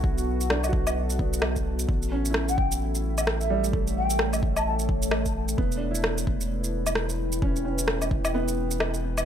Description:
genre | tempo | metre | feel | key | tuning
future garage | 130 BPM | 4/4 | swing 60% on 16ths | E dorian | A4 = 441 Hz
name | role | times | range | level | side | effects
felt-muted upright piano | accompaniment | 0.0-9.3 s | G3 to F#4 | -33 LUFS | right 2 dB | sidechain pumping, ping-pong delay
deep dark ambient pad | sustained chords | 0.0-9.3 s | A3 to G5 | -32 LUFS | left 2 dB | chorus, built-in reverb, sidechain pumping
warm sub bass | bass | 0.0-9.3 s | E1 to B1 | -29 LUFS | equal | sidechain pumping
electronic kick drum | drums | 0.0-8.2 s | none | -27 LUFS | equal | overdrive
electronic shaker, rim click and woodblock | drums | 0.2-9.2 s | none | -28 LUFS | equal | overdrive
mellow hollow baroque flute | melody | 2.5-4.7 s | E5 to A5 | -31 LUFS | left 1 dB | ping-pong delay
room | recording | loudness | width
light reverb | none | -23 LUFS | side -9 dB against mid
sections
0.0-9.3 A section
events
kick drops out 8.3-9.3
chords
0.0 Bm7; 1.9 A; 5.6 Em7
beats
| 0.04 0.50 0.96 1.42 | 1.88 2.34 2.81 3.27 | 3.73 4.19 4.65 5.11 | 5.58 6.04 6.50 6.96 | 7.42 7.88 8.34 8.80

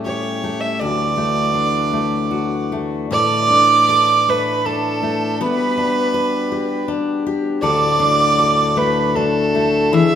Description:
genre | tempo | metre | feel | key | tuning
celtic folk, Celtic slow air | 79 BPM | 3/4 | rubato | D major | A4 = 442 Hz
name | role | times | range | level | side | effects
rich fiddle | melody | 0.0-10.2 s | A4 to E5 | -17 LUFS | right 3 dB | none
fingerpicked steel-string acoustic guitar | accompaniment | 0.0-10.2 s | D2 to B4 | -20 LUFS | left 4 dB | none
pedal harmonium | sustained chords | 0.0-10.2 s | D2 to D4 | -27 LUFS | equal | none
breathy bright concert flute | second line | 3.1-10.2 s | A5 to E6 | -23 LUFS | right 4 dB | none
room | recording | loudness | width
wet recital hall reverb, RT60 1.5 s | recorded in a church or concert hall | -15 LUFS | side -9 dB against mid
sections
0.0-3.1 A section; 3.1-10.2 B section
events
none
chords
0.0 A7; 0.8 Dadd9; 3.1 Asus4; 5.4 G/B; 7.6 D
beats
0.03 | 0.78 1.52 2.30 | 3.09 3.88 4.65 | 5.40 6.14 6.88 | 7.62 8.38 9.16 | 9.92

